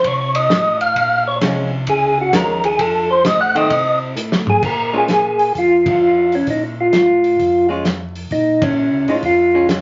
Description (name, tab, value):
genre	soul jazz organ trio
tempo	130 BPM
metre	4/4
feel	swing 67% on 8ths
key	Bb minor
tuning	A4 = 440 Hz
part	percussive tonewheel organ	melody	0.0-9.7 s	Db4 to Gb5	-16 LUFS	equal	slow rotary speaker
part	tonewheel organ	bass	0.0-9.8 s	F1 to C3	-29 LUFS	equal	slow rotary speaker
part	warm soul drum kit	drums	0.0-9.8 s	crash cymbal, hi-hat, kick drum, ride cymbal, snare drum, toms	-24 LUFS	equal	none
part	archtop guitar, miked and amplified	accompaniment	1.4-9.8 s	Eb3 to F4	-24 LUFS	equal	none
room	wet studio reverb, RT60 0.6 s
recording	vinyl crackle, nothing above 7.6 kHz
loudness	-16 LUFS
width	mono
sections	0.0-4.6 A section; 4.6-9.8 B section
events	tonewheel organ solo 0.0-4.6; drum fill 4.2-4.6; band accent 5.8, 8.5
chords	0.0 F7; 1.0 Bbm7; 2.8 F7; 4.6 Bbm7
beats	0.04 0.50 | 0.96 1.42 1.88 2.33 | 2.79 3.25 3.71 4.17 | 4.63 5.09 5.55 6.01 | 6.47 6.93 7.39 7.85 | 8.31 8.77 9.23 9.69